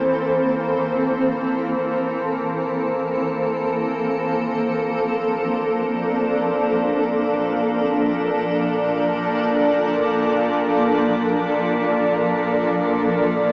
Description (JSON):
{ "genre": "ambient", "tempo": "free time", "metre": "none", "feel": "none", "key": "Bb lydian", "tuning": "A4 = 440 Hz", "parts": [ { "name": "granular cloud pad", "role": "sustained chords", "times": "0.0-13.5 s", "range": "E3 to D5", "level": "-19 LUFS", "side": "equal", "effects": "built-in reverb" }, { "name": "warm chamber cello section", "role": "bass", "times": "0.0-13.5 s", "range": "Bb2", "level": "-30 LUFS", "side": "equal", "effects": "none" }, { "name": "organ-like drone", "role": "drone", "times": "0.0-13.5 s", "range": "Bb3", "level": "-26 LUFS", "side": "equal", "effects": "ensemble chorus, built-in reverb" } ], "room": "wet cathedral reverb, RT60 5.7 s", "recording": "in a vast, echoing space, cassette tape, small speaker sound", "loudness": "-18 LUFS", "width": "side -30 dB against mid", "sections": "0.0-13.5 A section", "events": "fade-in on cello section 0.0-13.5; fade-in on synth drone 0.0-13.5", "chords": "0.0 C7/Bb; 4.0 Bbmaj7" }